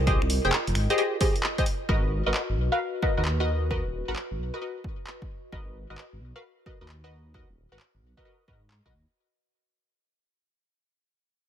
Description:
UK garage, two-step garage; 132 BPM; 4/4; swing 66% on 16ths; A4 = 439 Hz
punchy chord stab; stabs; 0.0-8.9 s; Gb4 to G5; -28 LUFS; left 1 dB; chorus, phaser, cassette tape, ping-pong delay
dark detuned saw bass; bass; 0.0-9.1 s; Eb1 to Ab2; -28 LUFS; equal; tube saturation
warbly tape-like pad; texture; 0.0-9.2 s; F4 to Eb5; -36 LUFS; equal; chorus, built-in reverb, sidechain pumping
electronic kick drum; drums; 0.1-8.9 s; -28 LUFS; equal
punchy analog drum machine; drums; 0.1-8.8 s; finger snaps, handclaps, hi-hat; -31 LUFS; equal
light reverb, digital ambience; -24 LUFS; side -9 dB against mid
0.0-9.2 A section
fade-out 0.0-9.2
0.0 Fm9; 1.7 Abm9

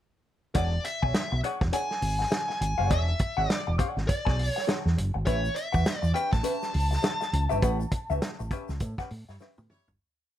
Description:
funk; 102 BPM; 4/4; swing 60% on 16ths; E mixolydian; A4 = 444 Hz
vintage hollow-body jazz guitar; accompaniment; 0.5-9.9 s; C#4 to G#5; -32 LUFS; left 3 dB; wah
warm soul drum kit; drums; 0.5-10.0 s; hi-hat, kick drum, snare drum, toms; -29 LUFS; equal
smooth overdriven lead guitar; melody; 0.6-9.4 s; C#5 to A5; -32 LUFS; equal
fingered electric bass; bass; 0.6-10.0 s; E1 to A2; -27 LUFS; equal; tube saturation
egg shaker; percussion; 5.3-10.0 s; -49 LUFS; left 4 dB
clear horn section; second line; 9.3-9.9 s; G3 to C#5; -62 LUFS; left 1 dB
light reverb; -25 LUFS; side -12 dB against mid
0.6-10.0 groove
fade-out 7.6-10.0; band accent 7.6-10.0; drum fill 9.4-10.0
0.6 E13; 5.3 A9

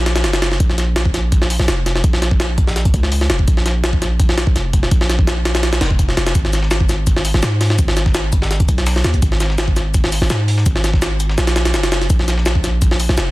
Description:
drum and bass, jungle; 167 BPM; 4/4; straight; A4 = 440 Hz
long sustained 808-style bass; bass; 0.0-13.3 s; E#1 to G#2; -17 LUFS; equal
jungle sampler-style drum kit; drums; 0.1-13.3 s; hi-hat, kick drum, snare drum; -16 LUFS; equal
breakbeat sampler-style drum kit; drums; 6.3-13.3 s; hi-hat, shaker, snare drum; -29 LUFS; left 2 dB; high-pass filter on perc, high-pass filter on snare, high-pass filter on hats
little or no reverb; dense, heavily limited modern master, vinyl crackle; -14 LUFS; side -19 dB against mid
0.0-13.3 A section

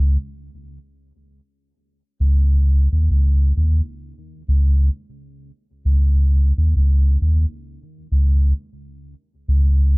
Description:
reggae; 66 BPM; 4/4; swing 59% on 16ths; A4 = 440 Hz
warm sub bass; solo; 0.0-10.0 s; C#2 to D#2; -15 LUFS; equal
little or no reverb; dark, warm production, lossy compression artefacts; -16 LUFS; side -37 dB against mid
0.0-2.2 A section; 2.2-10.0 B section
break 0.4-2.2

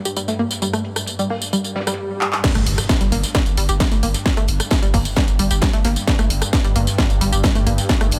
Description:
driving peak-time techno; 132 BPM; 4/4; straight; G minor; A4 = 440 Hz
swarming drone; drone; 0.0-8.2 s; G2; -30 LUFS; equal; built-in reverb, sidechain pumping
analog pluck; riff; 0.1-8.1 s; G3 to G4; -27 LUFS; equal; chorus, sidechain pumping, tape echo
damped 70s drum kit; drums; 0.1-8.2 s; hi-hat, snare drum; -37 LUFS; equal
techno drum kit; drums; 0.1-8.2 s; crash cymbal, handclaps, hi-hat, rim click, snare drum, tambourine; -25 LUFS; equal; overdrive, small room ambience
swell and impact; sound effects; 1.7-4.3 s; -32 LUFS; equal
electronic kick drum; drums; 2.4-8.0 s; -21 LUFS; equal; distortion, overdrive, small room ambience
saturated sub bass; bass; 2.6-8.2 s; G1; -24 LUFS; equal; overdrive, sidechain pumping, low-pass filter
little or no reverb; -19 LUFS; mono
0.0-2.4 A section; 2.4-8.2 B section
swell 1.7-2.4; drum fill 2.2; drop 2.4-8.2; impact 2.4-4.3

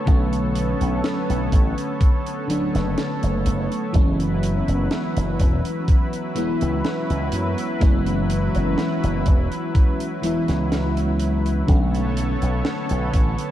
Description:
vaporwave; 62 BPM; 4/4; straight; B dorian; A4 = 440 Hz
FM electric piano with soft pad layer; accompaniment; 0.0-13.5 s; D3 to E4; -24 LUFS; equal; ensemble chorus, analog delay
lush unison pad; sustained chords; 0.0-13.5 s; F#3 to C#5; -27 LUFS; equal; chorus
slap bass with an envelope filter; bass; 0.1-13.3 s; E1 to F#2; -23 LUFS; equal
deep reggae drum kit; drums; 0.1-13.5 s; hi-hat, snare drum; -33 LUFS; right 1 dB
electronic kick drum; drums; 0.1-13.3 s; -17 LUFS; equal
moderate cathedral reverb, RT60 5.8 s; dreamy mix soaked in reverb; -19 LUFS; side -12 dB against mid
0.0-13.5 A section
0.0 Bm9; 3.9 F#7sus4; 11.7 Bm9

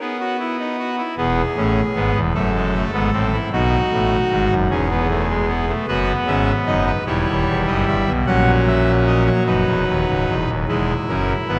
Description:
classical, baroque-style 4-part fugue for pipe organ; 51 BPM (dotted quarters); 6/8; straight; E major; A4 = 440 Hz
pipe organ, trumpet; solo; 0.0-11.6 s; C#1 to F#5; -19 LUFS; equal
wet church reverb, RT60 3.7 s; -19 LUFS; mono
0.0-10.7 A section
0.0 B; 1.2 E; 2.3 F#m9b5; 3.5 B7; 4.7 E; 5.9 B/F#; 7.1 D#7b9b13; 8.3 F#7/A#; 9.5 B; 10.7 E

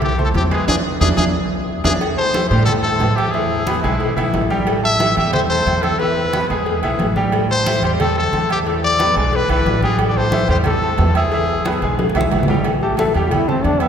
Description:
latin, salsa; 180 BPM; 4/4; straight; A minor; A4 = 440 Hz
bright trumpet; melody; 0.0-12.3 s; E4 to E5; -20 LUFS; left 2 dB
bright grand piano; accompaniment; 0.0-13.9 s; E3 to E6; -22 LUFS; equal
upright bass; bass; 0.0-13.9 s; A1 to A2; -20 LUFS; right 1 dB
bongos and cowbell; percussion; 0.0-13.8 s; -26 LUFS; left 2 dB
congas; percussion; 0.0-13.9 s; -24 LUFS; right 1 dB
timbales and agogo bells; percussion; 0.0-13.9 s; -26 LUFS; right 4 dB
bright trombone; melody; 12.8-13.9 s; B3 to A4; -18 LUFS; left 2 dB
wet cathedral reverb, RT60 5.0 s; recorded in a church or concert hall; -15 LUFS; side -8 dB against mid
0.0-2.0 A section; 2.0-12.7 B section; 12.7-13.9 C section
band accent 0.7-2.0; drum fill 1.0-2.0, 12.0-12.7; trombone solo 12.7-13.9
0.0 Fmaj7 (rootless); 0.7 E7; 2.0 Am7; 3.3 E; 4.7 Am7; 6.0 E; 7.3 Am7; 8.7 E7; 10.0 Am7; 11.3 E; 12.7 A5

